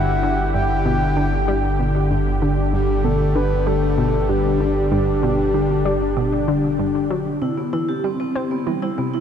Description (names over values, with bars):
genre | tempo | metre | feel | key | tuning
ambient, sequencer-driven space music | 96 BPM | 4/4 | straight | G major | A4 = 440 Hz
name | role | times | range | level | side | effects
breathy flute-like synth lead | melody | 0.0-6.8 s | G4 to G5 | -24 LUFS | equal | chorus, shimmer reverb, tape echo
lush unison pad | sustained chords | 0.0-9.2 s | C3 to G4 | -22 LUFS | left 2 dB | chorus, shimmer reverb
analog pluck | riff | 0.0-9.2 s | G2 to C4 | -24 LUFS | equal | chorus, shimmer reverb, tape echo
round analog bass | bass | 0.0-7.4 s | G1 | -23 LUFS | equal | none
vibraphone with medium mallets | arpeggios | 7.4-9.2 s | G3 to G4 | -23 LUFS | right 2 dB | auto-pan, shimmer reverb, tape echo
room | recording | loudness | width
wet huge ambient reverb, RT60 8.1 s | dark, warm production | -17 LUFS | side -8 dB against mid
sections
0.0-7.4 A section; 7.4-9.2 B section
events
none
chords
0.0 G6; 7.4 Cmaj7